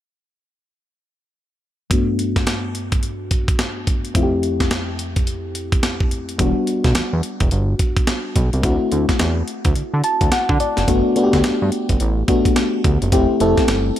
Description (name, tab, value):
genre	R&B, new jack swing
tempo	107 BPM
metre	4/4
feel	swing 62% on 16ths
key	G major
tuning	A4 = 438 Hz
part	mellow FM electric piano	accompaniment	1.9-14.0 s	F2 to A5	-20 LUFS	left 2 dB	chorus, low-pass filter
part	breakbeat sampler-style drum kit	drums	1.9-14.0 s	hi-hat, kick drum, snare drum	-19 LUFS	right 1 dB	none
part	fat analog bass	bass	6.4-13.9 s	E1 to D3	-19 LUFS	right 1 dB	none
room	light reverb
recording	none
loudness	-16 LUFS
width	side -12 dB against mid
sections	1.9-10.9 A section; 10.9-14.0 B section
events	filter sweep on FM electric piano 1.9-10.9; FM electric piano fill 9.8-10.9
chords	1.9 Gmaj9; 4.2 Fmaj9; 6.4 Em9; 8.6 D9; 10.9 Gmaj9; 13.1 Fmaj9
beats	| 1.91 2.47 3.03 3.59 | 4.15 4.71 5.27 5.83 | 6.39 6.95 7.51 8.08 | 8.64 9.20 9.76 10.32 | 10.88 11.44 12.00 12.56 | 13.12 13.68